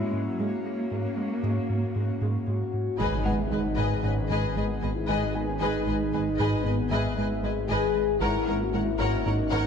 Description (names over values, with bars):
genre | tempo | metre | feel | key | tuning
cinematic, hybrid orchestral and electronic film score | 115 BPM | 5/4 | straight | G# minor | A4 = 440 Hz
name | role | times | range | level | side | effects
airy breathy pad | sustained chords | 0.0-9.7 s | D#3 to C#5 | -33 LUFS | left 1 dB | chorus
smooth synth bass | riff | 0.0-9.7 s | G#2 to G#3 | -30 LUFS | right 1 dB | none
rich symphonic cello section | bass | 0.0-9.6 s | G#2 to A#3 | -38 LUFS | right 2 dB | none
felt-muted upright piano | texture | 0.0-9.7 s | E4 to G#5 | -41 LUFS | left 3 dB | tape echo
rich studio viola section | accompaniment | 0.4-9.7 s | G#3 to B4 | -33 LUFS | equal | none
mellow French horn section | sustained chords | 2.5-9.7 s | G#3 to G#4 | -30 LUFS | left 4 dB | none
warm symphonic violin section | second line | 3.0-9.7 s | C#5 to G#5 | -34 LUFS | left 5 dB | none
rich symphonic double bass section | bass | 3.0-9.6 s | G#1 | -36 LUFS | right 2 dB | none
swelling detuned saw bass | bass | 3.0-9.7 s | G#1 | -34 LUFS | equal | none
impact | sound effects | 3.0-5.6 s | none | -36 LUFS | equal | none
room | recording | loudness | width
moderate scoring stage reverb, RT60 1.6 s | dark, warm production | -24 LUFS | side -7 dB against mid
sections
0.0-3.0 A section; 3.0-9.7 B section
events
impact 3.0-5.6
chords
0.0 F#/G#; 3.0 G#m; 8.2 F#/G#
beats
| 0.39 0.91 1.44 1.96 2.48 | 3.00 3.52 4.04 4.57 5.09 | 5.61 6.13 6.65 7.17 7.70 | 8.22 8.74 9.26